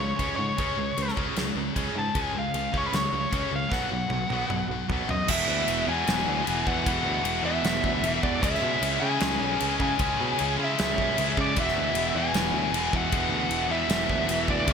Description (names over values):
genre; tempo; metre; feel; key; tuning
hard rock; 153 BPM; 4/4; straight; unclear; A4 = 440 Hz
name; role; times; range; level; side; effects
nasal lead guitar with a parked wah; melody; 0.0-14.7 s; B4 to A5; -28 LUFS; left 1 dB; overdrive, ping-pong delay
overdriven electric guitar; riff; 0.0-14.7 s; E2 to C#4; -32 LUFS; right 10 dB; none
scooped high-gain guitar; riff; 0.0-14.7 s; E2 to C#4; -31 LUFS; left 12 dB; distortion
picked electric bass; bass; 0.0-14.7 s; E1 to C#3; -33 LUFS; equal; none
gated 80s drum kit; drums; 0.2-14.7 s; crash cymbal, kick drum, snare drum, toms; -30 LUFS; equal; gated reverb
distorted electric guitar; riff; 5.3-14.7 s; C#3 to E4; -32 LUFS; equal; distortion
room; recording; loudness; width
moderate lush hall reverb, RT60 1.8 s, small room ambience; bright 1980s-style digital production; -23 LUFS; side -6 dB against mid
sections
0.0-5.3 A section; 5.3-14.7 B section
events
drum fill 3.7-5.3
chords
0.0 C#5; 3.7 B5; 5.3 E; 8.4 C#m; 11.6 E